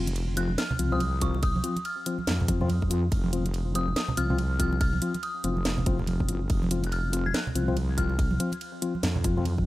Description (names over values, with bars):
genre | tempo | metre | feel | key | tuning
deep dubstep | 142 BPM | 4/4 | swing 60% on 16ths, half-time | unclear | A4 = 440 Hz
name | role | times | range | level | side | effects
mellow tine electric piano | stabs | 0.0-9.4 s | F3 to F4 | -32 LUFS | left 4 dB | dub echo
wobble bass | bass | 0.0-9.7 s | F1 to F2 | -28 LUFS | equal | chorus
garage drum kit | drums | 0.1-9.6 s | hi-hat, ride cymbal, snare drum | -34 LUFS | right 1 dB | none
congas | percussion | 0.1-9.6 s | none | -33 LUFS | right 2 dB | none
dark detuned synth bell | melody | 0.4-8.6 s | Db6 to Ab6 | -35 LUFS | left 1 dB | chorus, dub echo
electronic kick drum | drums | 1.2-9.7 s | none | -27 LUFS | equal | none
room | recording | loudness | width
light reverb | none | -24 LUFS | side -17 dB against mid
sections
0.0-9.7 A section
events
none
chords
0.0 F5